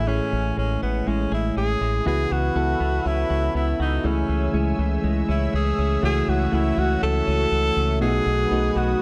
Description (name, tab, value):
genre	pop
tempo	121 BPM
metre	4/4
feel	straight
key	unclear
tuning	A4 = 440 Hz
part	clear tenor saxophone	melody	0.0-9.0 s	B3 to A4	-28 LUFS	equal	none
part	soft electric-piano-like synth keys	accompaniment	0.0-9.0 s	A2 to B4	-28 LUFS	equal	chorus
part	direct-recorded clean electric guitar	riff	0.0-9.0 s	E3 to G#4	-34 LUFS	equal	analog chorus
part	deep dub fingered electric bass	bass	0.0-8.9 s	A1 to C#2	-26 LUFS	equal	none
part	lush unison pad	sustained chords	2.1-9.0 s	F#4 to E6	-36 LUFS	equal	chorus, phaser
room	light reverb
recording	dark, warm production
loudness	-22 LUFS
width	mono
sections	0.0-2.1 A section; 2.1-9.0 B section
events	none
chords	0.0 Amaj7; 2.1 Esus2/C#; 4.0 Amaj7/C#; 6.0 F#m7/C#; 8.0 B7